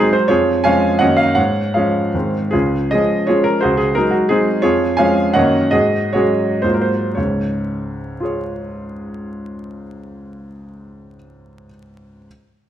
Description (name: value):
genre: classical, romantic triple-time dance for piano with dotted rhythms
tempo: 106-188 BPM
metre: 3/4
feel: rubato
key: Db major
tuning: A4 = 441 Hz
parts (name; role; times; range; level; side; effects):
- clear grand piano; solo; 0.0-12.3 s; Db2 to Ab5; -15 LUFS; equal; none
room: moderate recital hall reverb, RT60 1.5 s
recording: vinyl crackle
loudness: -14 LUFS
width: side -11 dB against mid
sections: 0.0-7.2 A section; 7.2-10.2 B section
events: slowing down 4.1-7.2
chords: 0.3 Db/F; 1.0 Ebm7/Gb; 1.4 Db/Ab; 2.1 Ab; 2.5 Db; 3.6 Ab7/Db; 4.6 Db/F; 5.4 Ebm7/Gb; 5.7 Ab7sus4; 6.6 Ab13; 7.2 Db